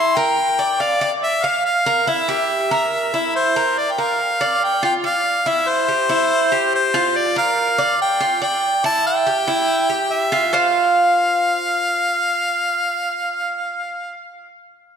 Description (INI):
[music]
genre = latin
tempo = 142 BPM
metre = 4/4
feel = straight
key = unclear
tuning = A4 = 441 Hz
[part]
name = clear harmonica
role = melody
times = 0.0-14.2 s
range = C5 to C6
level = -18 LUFS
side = left 1 dB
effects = tape echo
[part]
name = Cuban tres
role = arpeggios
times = 0.0-14.2 s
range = E4 to F5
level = -20 LUFS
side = right 2 dB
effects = tape echo
[sound]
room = wet lush hall reverb, RT60 2.0 s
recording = dreamy mix soaked in reverb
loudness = -16 LUFS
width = side -7 dB against mid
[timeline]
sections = 0.0-3.8 A section; 3.8-10.5 B section; 10.5-13.9 C section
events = none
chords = 0.4 Gm7; 2.1 C7; 3.8 Bb6; 5.5 C; 7.2 Gm7; 8.8 Em; 10.5 F5